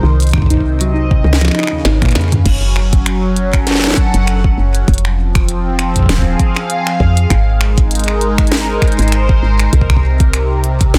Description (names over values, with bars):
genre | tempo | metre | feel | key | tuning
IDM | 99 BPM | 4/4 | swing 56% on 16ths | unclear | A4 = 440 Hz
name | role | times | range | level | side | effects
phased analog pad | sustained chords | 0.0-11.0 s | C3 to Gb5 | -21 LUFS | equal | phaser, chorus
harp-like synth pluck | arpeggios | 0.0-2.4 s | Eb2 to Eb4 | -21 LUFS | equal | chorus, digital delay
woody FM bass | bass | 0.0-11.0 s | Eb1 to F2 | -17 LUFS | equal | none
glitchy drum kit | drums | 0.2-11.0 s | crash cymbal, finger snaps, hi-hat, snare drum, toms | -21 LUFS | equal | soft clipping on snare, digital delay
electronic kick drum | drums | 0.3-10.9 s | none | -15 LUFS | equal | none
room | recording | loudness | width
light reverb, digital ambience | dense, heavily limited modern master | -13 LUFS | mono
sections
0.0-2.5 A section; 2.5-11.0 B section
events
drum fill 1.2-2.5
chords
0.0 Cm7; 1.2 Db7; 2.5 Gbm; 4.9 Fm; 7.3 Abadd9; 9.7 Cm7